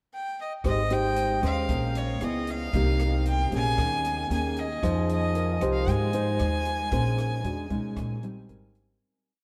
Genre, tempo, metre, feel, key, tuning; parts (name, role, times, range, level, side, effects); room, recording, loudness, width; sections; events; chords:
bossa nova; 115 BPM; 4/4; straight; Ab major; A4 = 440 Hz
clear violin; melody; 0.1-8.5 s; Db5 to Ab5; -33 LUFS; equal
nylon-string guitar; accompaniment; 0.6-9.0 s; Bb2 to C5; -31 LUFS; equal
upright bass; bass; 0.6-9.0 s; Ab1 to Ab2; -31 LUFS; equal
open jazz drum kit; drums; 0.6-8.9 s; hi-hat, kick drum, rim click; -36 LUFS; equal
warm grand piano; accompaniment; 0.9-1.9, 5.4-9.2 s; Bb4 to Eb5; -44 LUFS; equal
wet cathedral reverb, RT60 6.7 s; in a vast, echoing space; -27 LUFS; mono
0.0-0.6 pickup bar; 0.6-9.0 A section
fade-out 6.9-9.0
0.0 N.C.; 0.6 Abmaj7; 1.7 Bbm9; 2.2 Dbm7; 2.7 Cm7; 3.8 Eb7sus4; 4.8 Fm7; 5.9 Abmaj7; 6.9 Bbm9; 7.4 E9; 8.0 Eb7sus4/Bb; 8.5 Abmaj7